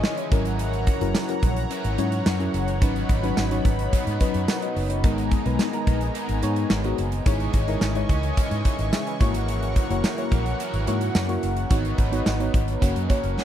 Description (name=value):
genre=1980s-style pop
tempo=108 BPM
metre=4/4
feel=straight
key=unclear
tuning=A4 = 440 Hz
part: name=FM electric piano with auto-pan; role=accompaniment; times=0.0-13.4 s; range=D#3 to G#5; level=-28 LUFS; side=left 2 dB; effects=phaser
part: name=crunchy overdriven guitar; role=accompaniment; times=0.0-13.4 s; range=F#2 to C#4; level=-34 LUFS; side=right 1 dB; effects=analog chorus
part: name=lush unison pad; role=sustained chords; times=0.0-13.4 s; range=E3 to C#6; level=-30 LUFS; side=equal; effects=chorus
part: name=gated 80s drum kit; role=drums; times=0.0-13.4 s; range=hi-hat, kick drum, snare drum, tambourine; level=-23 LUFS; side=equal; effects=none
part: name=vintage muted fingered electric bass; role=bass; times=0.3-13.3 s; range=F#1 to G#2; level=-26 LUFS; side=equal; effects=none
room=little or no reverb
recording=none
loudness=-21 LUFS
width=side -10 dB against mid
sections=0.0-13.4 A section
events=none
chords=0.3 F#7; 2.8 Badd9/G#; 7.3 C#madd9/G#; 9.2 F#7; 11.7 Badd9/G#; 12.8 F#